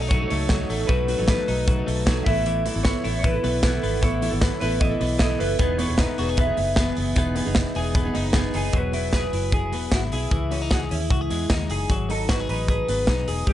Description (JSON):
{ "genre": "jangly indie pop", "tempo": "153 BPM", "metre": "4/4", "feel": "straight", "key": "E major", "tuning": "A4 = 441 Hz", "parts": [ { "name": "electric guitar through a small old amp", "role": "melody", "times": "0.0-13.5 s", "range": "E4 to E5", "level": "-28 LUFS", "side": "equal", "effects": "lush chorus, analog delay" }, { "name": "picked steel-string acoustic guitar", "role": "accompaniment", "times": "0.0-9.2 s", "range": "B2 to A4", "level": "-29 LUFS", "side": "right 5 dB", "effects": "analog delay" }, { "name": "twelve-string electric guitar", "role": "arpeggios", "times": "0.0-13.5 s", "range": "E3 to G#4", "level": "-29 LUFS", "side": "left 5 dB", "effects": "analog delay" }, { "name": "vintage muted fingered electric bass", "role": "bass", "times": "0.0-13.5 s", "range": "E1 to E2", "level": "-27 LUFS", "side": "equal", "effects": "none" }, { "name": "modern studio drum kit", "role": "drums", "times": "0.1-13.5 s", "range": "hi-hat, kick drum, snare drum", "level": "-24 LUFS", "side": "equal", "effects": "analog delay" } ], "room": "studio ambience", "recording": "echo-heavy mix, nothing above 10.8 kHz", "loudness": "-20 LUFS", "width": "side -12 dB against mid", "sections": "0.0-8.7 A section; 8.7-13.5 B section", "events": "none", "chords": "0.0 B7; 2.3 Asus2; 5.6 Emaj7; 8.7 Eadd9; 10.3 C#madd9; 11.9 G#m7", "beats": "0.11 0.50 | 0.89 1.28 1.68 2.07 | 2.46 2.85 3.24 3.63 | 4.03 4.42 4.81 5.20 | 5.59 5.99 6.38 6.77 | 7.16 7.56 7.95 8.34 | 8.74 9.13 9.53 9.92 | 10.32 10.71 11.11 11.50 | 11.90 12.29 12.69 13.08 | 13.47" }